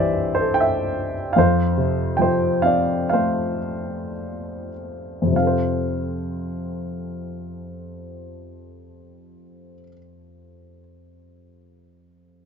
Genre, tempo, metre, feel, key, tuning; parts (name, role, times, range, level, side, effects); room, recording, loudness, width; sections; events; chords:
classical, lyrical solo piano; 48-78 BPM; 4/4; rubato; F major; A4 = 440 Hz
warm baby grand piano; solo; 0.0-12.5 s; C2 to G5; -20 LUFS; equal
light reverb; nothing above 7.6 kHz; -19 LUFS; side -6 dB against mid
0.0-5.3 A section; 5.3-10.2 B section
slowing down 0.0-5.3
0.0 C; 1.4 F